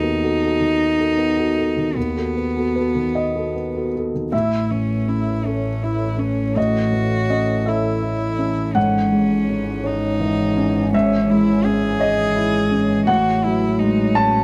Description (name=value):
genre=neoclassical piano and strings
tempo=55 BPM (dotted quarters)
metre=6/8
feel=rubato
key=unclear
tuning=A4 = 441 Hz
part: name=warm cello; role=second line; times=0.0-14.4 s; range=B3 to G#4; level=-26 LUFS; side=equal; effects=none
part: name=dark concert grand piano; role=accompaniment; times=0.0-14.4 s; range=D#2 to A5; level=-21 LUFS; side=equal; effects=none
part: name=deep dark ambient pad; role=sustained chords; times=5.0-14.4 s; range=E3 to C#5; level=-31 LUFS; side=equal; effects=chorus, built-in reverb
part: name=rich double bass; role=bass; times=4.3-14.4 s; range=G#1 to A1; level=-28 LUFS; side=equal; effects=none
room=light reverb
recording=none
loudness=-19 LUFS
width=mono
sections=0.0-4.3 A section; 4.3-14.4 B section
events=none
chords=0.0 B7/D#; 4.3 A; 8.8 C#m/G#; 13.1 F#madd9/A